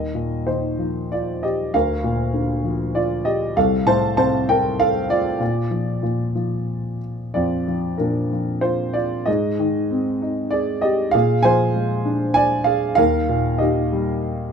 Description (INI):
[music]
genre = classical, lyrical solo piano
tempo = 90-100 BPM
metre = 3/4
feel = rubato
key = unclear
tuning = A4 = 439 Hz
[part]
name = dark grand piano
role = solo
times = 0.0-14.5 s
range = C2 to A5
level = -18 LUFS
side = equal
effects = none
[sound]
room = moderate small room reverb, RT60 0.5 s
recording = minimal, uncompressed stereo recording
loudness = -18 LUFS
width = side -6 dB against mid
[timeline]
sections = 0.0-14.5 A section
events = none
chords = 0.0 Ebsus2; 1.7 Bb/D; 3.6 F/C; 5.4 Bb; 9.3 Ab; 11.1 Bb7; 13.0 Eb